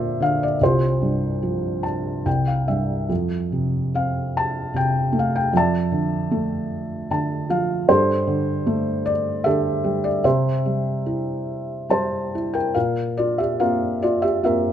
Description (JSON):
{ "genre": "classical, lyrical solo piano", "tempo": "69-77 BPM", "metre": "3/4", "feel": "rubato", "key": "unclear", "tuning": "A4 = 444 Hz", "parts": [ { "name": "felt-muted upright piano", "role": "solo", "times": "0.0-14.7 s", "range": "C2 to A5", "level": "-19 LUFS", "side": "equal", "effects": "none" } ], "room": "light reverb", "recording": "close, detailed microphones", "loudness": "-19 LUFS", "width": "side -10 dB against mid", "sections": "0.0-12.8 A section; 12.8-14.7 B section", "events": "felt piano fill 1.4-3.1, 6.7-7.9", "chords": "0.0 Gm7/D; 0.6 Csus4; 2.3 C; 3.1 F; 5.5 Dmadd9/F; 7.9 Gsus2; 10.2 C; 12.8 Bbsus2", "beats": "| 0.61 1.42 2.26 | 3.10 3.94 4.75 | 5.54 6.32 7.11 | 7.89 8.67 9.45 | 10.25 11.06 11.90 | 12.75 13.59 14.43" }